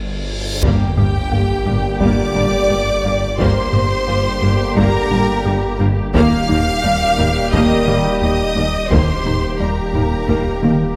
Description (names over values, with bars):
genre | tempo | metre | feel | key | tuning
cinematic, hybrid orchestral and electronic film score | 87 BPM | 4/4 | straight | G minor | A4 = 441 Hz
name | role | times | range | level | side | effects
detuned saw bass | bass | 0.0-11.0 s | Eb1 to G1 | -27 LUFS | equal | chorus
reverse cymbal and sub drop | sound effects | 0.0-3.4 s | none | -28 LUFS | equal | none
rich symphonic violin section | melody | 0.6-11.0 s | G5 to F6 | -28 LUFS | equal | none
rich symphonic violin section | second line | 0.6-11.0 s | G4 to F5 | -24 LUFS | equal | none
clear symphonic viola section | accompaniment | 0.6-11.0 s | G3 to G4 | -26 LUFS | equal | none
mellow French horn section | sustained chords | 0.6-11.0 s | Bb3 to G4 | -27 LUFS | equal | none
warm trombone section | sustained chords | 0.6-11.0 s | D3 to G3 | -29 LUFS | equal | none
woody wave-folded pluck | arpeggios | 0.6-10.8 s | Eb3 to G4 | -29 LUFS | equal | none
round analog bass | riff | 0.6-10.8 s | Eb2 to G3 | -24 LUFS | equal | none
rich studio cello section | bass | 0.6-10.7 s | Eb2 to G2 | -26 LUFS | equal | none
rich symphonic double bass section | bass | 0.6-10.7 s | G1 to Eb2 | -27 LUFS | equal | none
taiko ensemble | drums | 0.6-11.0 s | none | -25 LUFS | equal | none
room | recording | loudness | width
moderate scoring stage reverb, RT60 1.5 s | none | -16 LUFS | mono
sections
0.6-11.0 A section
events
break 0.0-0.6; reverse cymbal 0.0-0.6; impact 0.6-3.4; drum fill 10.6-11.0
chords
0.0 N.C.; 0.6 Gm; 6.2 Eb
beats
| 0.64 1.33 2.02 2.71 | 3.40 4.08 4.77 5.46 | 6.15 6.84 7.53 8.22 | 8.91 9.60 10.29